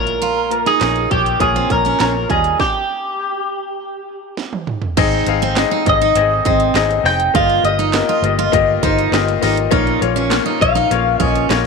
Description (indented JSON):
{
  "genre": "piano-driven pop",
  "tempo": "101 BPM",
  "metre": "4/4",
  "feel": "straight",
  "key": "Ab major",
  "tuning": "A4 = 440 Hz",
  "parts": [
    { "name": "twelve-string electric guitar", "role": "melody", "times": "0.0-11.5 s", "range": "G4 to G5", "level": "-17 LUFS", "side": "equal", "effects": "phaser" },
    { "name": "clear baby grand piano", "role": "accompaniment", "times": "0.0-11.7 s", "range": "G2 to F5", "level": "-18 LUFS", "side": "left 12 dB", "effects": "none" },
    { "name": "vintage muted fingered electric bass", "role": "bass", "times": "0.0-11.7 s", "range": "F1 to Eb2", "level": "-22 LUFS", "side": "equal", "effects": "none" },
    { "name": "house drum kit", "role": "drums", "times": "0.1-11.6 s", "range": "crash cymbal, handclaps, hi-hat, kick drum, snare drum, toms", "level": "-22 LUFS", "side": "right 4 dB", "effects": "none" },
    { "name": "picked steel-string acoustic guitar", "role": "riff", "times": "0.2-11.5 s", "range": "C4 to F4", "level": "-21 LUFS", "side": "right 13 dB", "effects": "none" }
  ],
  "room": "moderate plate reverb, RT60 2.4 s",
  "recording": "1960s-style stereo with parts hard left and right",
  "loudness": "-13 LUFS",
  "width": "side -4 dB against mid",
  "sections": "0.0-5.0 A section; 5.0-11.7 B section",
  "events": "stop 2.6-5.0; drum fill 4.4-5.0",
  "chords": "0.0 Bbm; 2.3 Ebadd9; 5.0 Ab; 7.3 Ebadd9/G; 9.7 Bbm",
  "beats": "| 0.22 0.81 1.41 2.00 | 2.60 3.19 3.78 4.38 | 4.97 5.57 6.16 6.75 | 7.35 7.94 8.53 9.13 | 9.72 10.31 10.91 11.50"
}